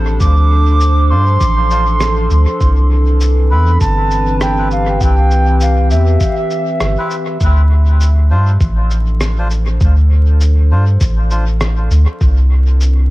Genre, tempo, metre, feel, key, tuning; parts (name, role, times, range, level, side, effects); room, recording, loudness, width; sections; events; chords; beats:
ambient dub; 100 BPM; 4/4; swing 58% on 16ths; D dorian; A4 = 440 Hz
warbly tape-like pad; sustained chords; 0.0-13.1 s; E3 to C5; -22 LUFS; equal; chorus, built-in reverb, cassette tape
soft dub sub bass; bass; 0.0-13.1 s; G1 to G2; -11 LUFS; equal; tube saturation
wooden flute; melody; 0.2-7.1 s; E5 to D6; -19 LUFS; right 2 dB; cassette tape, dub echo
electronic cabasa and rim click; drums; 0.2-12.9 s; -26 LUFS; equal; studio ambience, cassette tape, dub echo
electronic kick drum; drums; 0.2-12.3 s; -15 LUFS; equal; studio ambience, cassette tape
melodica; stabs; 1.1-11.4 s; C4 to C5; -27 LUFS; left 1 dB; cassette tape, dub echo
little or no reverb; home recording on cassette, vinyl crackle; -10 LUFS; side -18 dB against mid
0.0-7.4 A section; 7.4-13.1 A section
fade-in on ambient pad 7.4-13.1
0.0 Dm7; 2.6 Cmaj7; 7.4 Dm7; 12.2 C
| 0.21 0.81 1.41 2.01 | 2.61 3.21 3.81 4.41 | 5.01 5.61 6.21 6.81 | 7.41 8.01 8.61 9.21 | 9.81 10.41 11.01 11.61 | 12.21 12.81